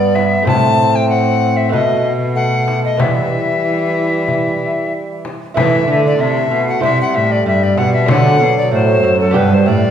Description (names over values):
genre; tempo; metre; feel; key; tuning
classical, renaissance-style consort dance; 95 BPM; 4/4; straight; E minor; A4 = 440 Hz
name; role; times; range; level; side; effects
bright tenor recorder; melody; 0.0-9.9 s; A4 to A5; -16 LUFS; left 4 dB; none
lute; accompaniment; 0.0-9.9 s; F#2 to C5; -20 LUFS; right 4 dB; none
mellow bassoon; accompaniment; 0.0-9.9 s; F#3 to C4; -20 LUFS; equal; none
rich cello; bass; 0.0-9.9 s; F#2 to E3; -17 LUFS; right 2 dB; none
frame drum; percussion; 0.2-9.6 s; none; -21 LUFS; left 1 dB; none
room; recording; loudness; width
wet recital hall reverb, RT60 1.5 s; recorded in a church or concert hall; -12 LUFS; side -9 dB against mid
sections
0.0-5.6 A section; 5.6-9.9 A section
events
none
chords
0.5 Am; 1.7 B7; 3.0 Em; 5.6 E5; 6.8 C; 8.1 D; 9.3 G